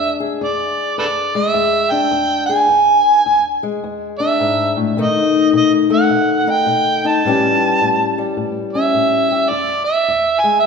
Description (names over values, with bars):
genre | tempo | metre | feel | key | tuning
acoustic country blues, solo or duo | 105 BPM | 4/4 | swing 64% on 8ths | unclear | A4 = 440 Hz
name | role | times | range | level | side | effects
overdriven harmonica | melody | 0.0-10.7 s | A4 to A5 | -15 LUFS | right 2 dB | none
fingerpicked old ladder-braced acoustic guitar | accompaniment | 0.0-10.7 s | E2 to G#4 | -18 LUFS | left 5 dB | none
room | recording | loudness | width
wet scoring stage reverb, RT60 1.8 s | minimal, uncompressed stereo recording | -13 LUFS | side -5 dB against mid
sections
0.0-10.7 A section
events
none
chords
0.0 E7; 5.0 B7; 7.2 A7; 9.5 E